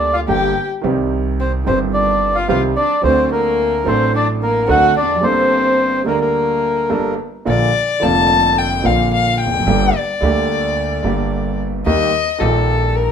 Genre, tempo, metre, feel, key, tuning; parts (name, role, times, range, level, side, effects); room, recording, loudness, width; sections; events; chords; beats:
tango; 109 BPM; 4/4; rubato; G minor, Bb major from 7.5 s; A4 = 440 Hz
bandoneon; melody; 0.0-7.1 s; Bb4 to G5; -17 LUFS; equal
dark violin; second line; 0.0-13.1 s; Bb3 to A5; -19 LUFS; left 5 dB
warm concert grand piano; accompaniment; 0.0-13.1 s; F1 to Bb4; -19 LUFS; right 3 dB
upright bass; bass; 0.0-13.1 s; E1 to Eb2; -21 LUFS; right 1 dB
moderate large studio reverb, RT60 0.9 s; minimal, uncompressed stereo recording; -14 LUFS; side -7 dB against mid
0.0-7.5 A section; 7.5-13.1 B section
violin solo 7.5-13.1
0.0 Gm; 0.8 Cm; 3.0 D7; 5.2 Gmadd9; 7.5 Bb; 9.7 Gm; 11.9 Eb
0.29 | 0.84 1.39 1.94 2.49 | 3.04 3.59 4.14 4.69 | 5.24 5.79 6.35 6.91 | 7.46 8.02 8.57 9.12 | 9.67 10.22 10.76 11.31 | 11.86 12.41 12.96